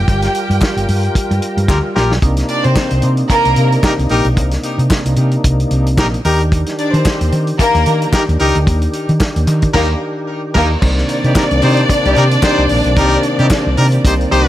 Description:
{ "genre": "disco", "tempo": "112 BPM", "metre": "4/4", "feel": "swing 56% on 16ths", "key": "C minor", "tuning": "A4 = 440 Hz", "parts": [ { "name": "warm studio violin section", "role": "second line", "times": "0.0-14.5 s", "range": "Bb3 to G5", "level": "-17 LUFS", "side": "equal", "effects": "none" }, { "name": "percussive tonewheel organ", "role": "sustained chords", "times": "0.0-14.5 s", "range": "C3 to Bb4", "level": "-20 LUFS", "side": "right 1 dB", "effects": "overdrive, chorus vibrato, slow rotary speaker" }, { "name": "hollow-body short-scale fingered electric bass", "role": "bass", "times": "0.0-14.5 s", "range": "G1 to Eb3", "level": "-14 LUFS", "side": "equal", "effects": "none" }, { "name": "warm soul drum kit", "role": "drums", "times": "0.1-14.5 s", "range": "crash cymbal, hi-hat, kick drum, snare drum", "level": "-17 LUFS", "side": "equal", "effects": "none" }, { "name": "group handclap", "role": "percussion", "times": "0.6-13.6 s", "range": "none", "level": "-28 LUFS", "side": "left 2 dB", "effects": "none" }, { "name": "clear horn section", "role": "stabs", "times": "1.7-14.5 s", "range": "G3 to C5", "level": "-19 LUFS", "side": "left 2 dB", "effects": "tape echo" } ], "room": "small room ambience", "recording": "none", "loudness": "-11 LUFS", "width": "side -14 dB against mid", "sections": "0.0-2.2 A section; 2.2-10.8 B section; 10.8-14.5 C section", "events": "band accent 0.1-2.2, 9.7-10.8; drum fill 1.7-2.2", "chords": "0.0 Gm7; 2.2 Cm9; 6.2 Ebmaj7; 10.8 Cm9" }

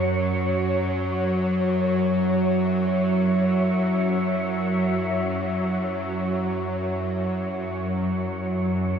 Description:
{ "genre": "dark ambient drone", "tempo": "free time", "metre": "none", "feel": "none", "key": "unclear", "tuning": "A4 = 440 Hz", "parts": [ { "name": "deep dark ambient pad", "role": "sustained chords", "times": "0.0-9.0 s", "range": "F#4 to F#5", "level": "-30 LUFS", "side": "left 2 dB", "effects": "chorus, built-in reverb" }, { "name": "bowed-like drone", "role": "drone", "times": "0.0-9.0 s", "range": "F#2 to F#3", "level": "-23 LUFS", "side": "right 1 dB", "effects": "built-in reverb" }, { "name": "wind-like tuned noise texture", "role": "texture", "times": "0.0-9.0 s", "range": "C#5", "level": "-31 LUFS", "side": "right 1 dB", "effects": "built-in reverb" } ], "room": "wet cathedral reverb, RT60 5.4 s", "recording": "cassette tape", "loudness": "-22 LUFS", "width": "side -7 dB against mid", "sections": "0.0-9.0 A section", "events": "none", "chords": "0.0 F#5" }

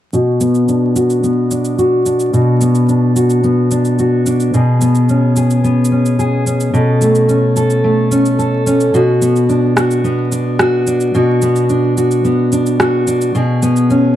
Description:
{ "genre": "folktronica", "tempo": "109 BPM", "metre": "4/4", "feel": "straight", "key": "B dorian", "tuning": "A4 = 439 Hz", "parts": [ { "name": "fingerpicked steel-string acoustic guitar", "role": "arpeggios", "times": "0.1-14.2 s", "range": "B2 to A4", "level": "-11 LUFS", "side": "equal", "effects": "low-pass filter" }, { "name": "electronic cabasa and rim click", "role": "drums", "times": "0.1-14.0 s", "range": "none", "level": "-21 LUFS", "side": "right 1 dB", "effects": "none" } ], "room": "light reverb, small room ambience", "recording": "dark, warm production, vinyl crackle", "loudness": "-11 LUFS", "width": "side -12 dB against mid", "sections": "0.1-14.2 A section", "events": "filter sweep on steel-string acoustic guitar 0.1-14.2", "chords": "0.1 Bm; 4.5 C#5/B; 6.7 A/B; 8.9 Bm; 13.3 C#5/B" }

